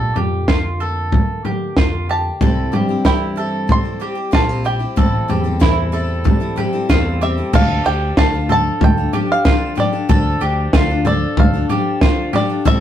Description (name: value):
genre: indie folk with a building arrangement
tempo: 94 BPM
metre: 4/4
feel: straight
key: D minor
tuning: A4 = 441 Hz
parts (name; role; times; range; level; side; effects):
- bluegrass banjo; melody; 0.0-12.8 s; D5 to C6; -21 LUFS; right 2 dB; none
- fingerpicked steel-string acoustic guitar; accompaniment; 0.0-7.5 s; A2 to E4; -29 LUFS; left 1 dB; none
- mandolin; arpeggios; 0.0-12.8 s; E4 to A4; -22 LUFS; right 2 dB; none
- fingered electric bass; bass; 0.0-12.8 s; A1 to G2; -21 LUFS; equal; none
- compact cocktail drum kit; drums; 0.2-12.8 s; crash cymbal, kick drum, snare drum, toms; -16 LUFS; equal; none
- picked steel-string acoustic guitar; accompaniment; 2.4-12.8 s; A2 to C5; -25 LUFS; left 5 dB; none
room: moderate studio reverb, RT60 0.6 s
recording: rough rehearsal-room recording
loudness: -14 LUFS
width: side -10 dB against mid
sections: 0.0-7.5 A section; 7.5-12.8 B section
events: none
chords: 0.0 Bbmaj7; 2.4 C; 5.0 Am7; 7.5 Dm